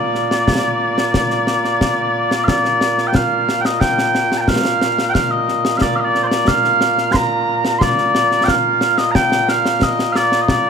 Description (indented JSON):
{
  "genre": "scottish traditional, Scottish pipe music",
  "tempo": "90 BPM",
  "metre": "4/4",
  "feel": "straight",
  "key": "Bb major",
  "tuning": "A4 = 440 Hz",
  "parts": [
    { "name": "mellow small bagpipes", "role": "melody", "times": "0.0-10.7 s", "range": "Bb2 to C6", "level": "-15 LUFS", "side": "equal", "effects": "slapback echo" },
    { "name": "concert snare drum and concert bass drum", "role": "drums", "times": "0.1-10.6 s", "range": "none", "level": "-19 LUFS", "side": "left 1 dB", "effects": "none" }
  ],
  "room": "light reverb",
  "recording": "none",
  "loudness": "-14 LUFS",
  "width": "side -6 dB against mid",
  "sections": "0.0-7.8 A section; 7.8-10.7 A section",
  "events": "none",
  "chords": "none",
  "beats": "0.48 1.15 1.82 | 2.48 3.15 3.82 4.48 | 5.15 5.82 6.48 7.15 | 7.82 8.48 9.15 9.82 | 10.48"
}